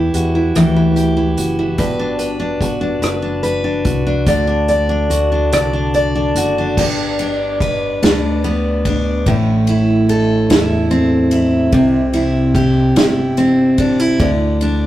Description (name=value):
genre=six-eight pop ballad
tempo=48 BPM (dotted quarters)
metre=6/8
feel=straight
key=G major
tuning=A4 = 440 Hz
part: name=picked steel-string acoustic guitar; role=accompaniment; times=0.0-14.9 s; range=G2 to D5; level=-14 LUFS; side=equal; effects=none
part: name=fingered electric bass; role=bass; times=0.0-14.9 s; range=F#1 to E2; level=-20 LUFS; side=equal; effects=none
part: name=unplugged drum kit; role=drums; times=0.1-14.8 s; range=crash cymbal, hi-hat, kick drum, ride cymbal, rim click, snare drum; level=-20 LUFS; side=right 1 dB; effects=none
room=moderate studio reverb, RT60 0.6 s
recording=rough rehearsal-room recording, tube saturation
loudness=-13 LUFS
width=side -13 dB against mid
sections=0.0-6.8 A section; 6.8-14.9 B section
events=none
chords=0.0 Emadd9; 1.8 Gmaj7; 4.3 D; 6.8 G; 9.3 Am; 11.7 C; 14.2 G5/D